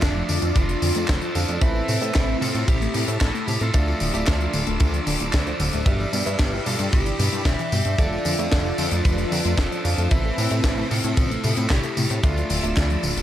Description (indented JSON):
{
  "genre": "italo disco",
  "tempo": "113 BPM",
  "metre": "4/4",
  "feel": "straight",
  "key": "D dorian",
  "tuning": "A4 = 440 Hz",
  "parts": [
    { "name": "biting lead guitar", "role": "melody", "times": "0.0-13.2 s", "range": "A3 to E5", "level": "-28 LUFS", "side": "equal", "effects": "overdrive, digital delay" },
    { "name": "string machine, full ensemble", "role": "sustained chords", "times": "0.0-13.2 s", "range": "C4 to E6", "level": "-29 LUFS", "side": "equal", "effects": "ensemble chorus" },
    { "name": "warbly dusty pluck", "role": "arpeggios", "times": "0.0-13.2 s", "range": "B2 to C4", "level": "-30 LUFS", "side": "left 2 dB", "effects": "chorus, digital delay" },
    { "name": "warm concert grand piano", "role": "stabs", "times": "0.0-13.2 s", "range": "A3 to F5", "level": "-32 LUFS", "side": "right 2 dB", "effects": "none" },
    { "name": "chorused synth bass", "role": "bass", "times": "0.0-13.2 s", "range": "D1 to A2", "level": "-25 LUFS", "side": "equal", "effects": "none" },
    { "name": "kick drum", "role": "drums", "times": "0.0-12.9 s", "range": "none", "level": "-21 LUFS", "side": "equal", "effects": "none" },
    { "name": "tight funk drum kit", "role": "drums", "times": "0.0-13.2 s", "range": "handclaps, hi-hat, snare drum, tambourine", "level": "-28 LUFS", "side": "left 1 dB", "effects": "none" }
  ],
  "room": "small room reverb",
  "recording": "none",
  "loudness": "-19 LUFS",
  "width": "side -12 dB against mid",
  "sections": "0.0-13.2 A section",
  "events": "none",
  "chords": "0.0 Dmadd9/F; 1.6 Am; 3.7 Dmadd9; 5.9 G6; 8.0 Dmadd9/F; 10.1 Am; 12.2 Dmadd9"
}